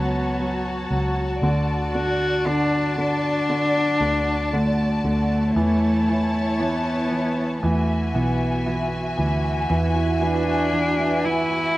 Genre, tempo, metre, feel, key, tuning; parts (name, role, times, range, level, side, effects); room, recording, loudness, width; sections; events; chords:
pop ballad; 58 BPM; 4/4; straight; A4 = 440 Hz
warm cello; melody; 0.0-11.8 s; A3 to F#4; -22 LUFS; left 1 dB
clear baby grand piano; accompaniment; 0.0-11.8 s; D3 to F#3; -28 LUFS; right 2 dB
warm studio string section; sustained chords; 0.0-11.8 s; E4 to A5; -26 LUFS; left 1 dB
vintage muted fingered electric bass; bass; 0.0-11.8 s; B1 to E2; -26 LUFS; equal
fingerpicked old ladder-braced acoustic guitar; arpeggios; 9.7-11.8 s; E3 to F#4; -27 LUFS; right 6 dB
little or no reverb; recorded outdoors, with no room sound; -19 LUFS; side -17 dB against mid
0.0-11.8 A section
0.0 F#m; 1.4 D; 5.6 A/E; 7.6 Eadd9